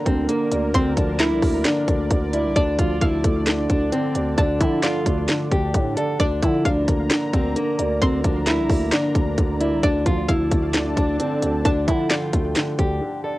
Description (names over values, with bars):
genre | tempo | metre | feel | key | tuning
hip hop, trap | 132 BPM | 4/4 | half-time | D minor | A4 = 440 Hz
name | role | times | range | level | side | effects
dark concert grand piano | accompaniment | 0.0-13.4 s | D3 to D5 | -26 LUFS | equal | low-pass filter
dark analog pad | sustained chords | 0.0-13.4 s | D4 to Bb5 | -29 LUFS | right 1 dB | chorus
nylon-string guitar | melody | 0.1-13.4 s | Bb3 to A4 | -24 LUFS | equal | low-pass filter, cassette tape
growling 808-style bass | bass | 0.1-13.0 s | C2 to D3 | -26 LUFS | equal | none
trap drum kit | drums | 0.1-12.9 s | handclaps, hi-hat, kick drum, snare drum | -22 LUFS | equal | cassette tape
string-like resonator pluck | second line | 0.7-12.5 s | D5 to C6 | -28 LUFS | equal | chorus, analog delay
room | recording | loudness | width
light reverb | home recording on cassette | -18 LUFS | side -17 dB against mid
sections
0.0-13.4 A section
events
break 13.0-13.4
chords
0.0 Bb/D; 2.6 Dm; 6.2 Bb/D; 9.8 Dm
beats
0.29 | 0.74 1.20 1.65 2.11 | 2.56 3.02 3.47 3.92 | 4.38 4.83 5.29 5.74 | 6.20 6.65 7.11 7.56 | 8.02 8.47 8.92 9.38 | 9.83 10.29 10.74 11.20 | 11.65 12.11 12.56 13.02